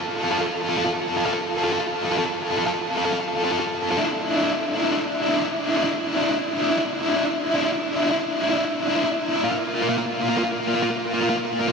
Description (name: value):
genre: rock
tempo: 44 BPM (dotted quarters)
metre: 6/8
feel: straight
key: unclear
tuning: A4 = 440 Hz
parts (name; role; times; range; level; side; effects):
- overdriven electric guitar; solo; 0.0-11.7 s; Bb3 to A4; -20 LUFS; equal; tremolo
room: wet huge ambient reverb, RT60 7.2 s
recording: dreamy mix soaked in reverb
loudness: -20 LUFS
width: side -5 dB against mid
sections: 0.0-11.7 A section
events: build-up 0.0-11.7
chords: 0.0 F; 4.0 Dsus2; 9.4 Bb5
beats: | 1.25 2.62 | 3.98 5.34 | 6.71 8.07 | 9.44 10.80